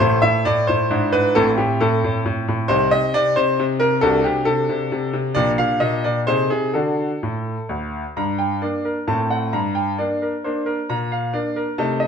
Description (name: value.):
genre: classical-period piano sonatina.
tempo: 134 BPM.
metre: 3/4.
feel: straight.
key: G minor.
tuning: A4 = 445 Hz.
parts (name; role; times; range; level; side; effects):
bright grand piano; solo; 0.0-12.1 s; A1 to Bb5; -18 LUFS; equal; none.
room: wet stone room reverb, RT60 0.9 s.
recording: none.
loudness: -18 LUFS.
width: side -7 dB against mid.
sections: 0.0-8.2 A section; 8.2-12.1 B section.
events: none.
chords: 0.0 A5; 0.9 E7/G#; 1.4 Am; 2.7 Cm9; 4.0 D7/C; 5.4 Gm/Bb; 6.3 Ab/C; 6.7 D; 8.2 Gm; 9.1 F#dim/A; 9.5 Gm; 10.9 Bb.